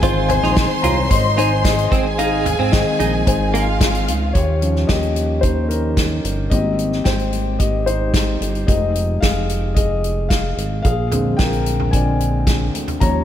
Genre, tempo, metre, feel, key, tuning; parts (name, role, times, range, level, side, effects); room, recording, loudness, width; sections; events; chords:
piano-driven pop; 111 BPM; 4/4; straight; Ab major; A4 = 440 Hz
rich studio violin section; second line; 0.0-4.3 s; F4 to C6; -24 LUFS; right 1 dB; ping-pong delay
warm concert grand piano; accompaniment; 0.0-13.2 s; D3 to C6; -20 LUFS; left 3 dB
direct-recorded clean electric guitar; riff; 0.0-3.7 s; Bb3 to F4; -24 LUFS; right 6 dB; lush chorus
chorused synth bass; bass; 0.0-13.2 s; F1 to Eb2; -21 LUFS; equal
natural country drum kit; drums; 0.0-13.1 s; hi-hat, kick drum, snare drum, toms; -20 LUFS; equal
moderate church reverb, RT60 3.4 s; dreamy mix soaked in reverb; -15 LUFS; side -10 dB against mid
0.0-4.4 A section; 4.4-13.2 B section
grand piano solo 0.0-4.4, 4.4-13.2
0.0 Ab; 4.4 Eb7; 6.5 Abmaj7; 8.7 Fm7; 10.8 Bb7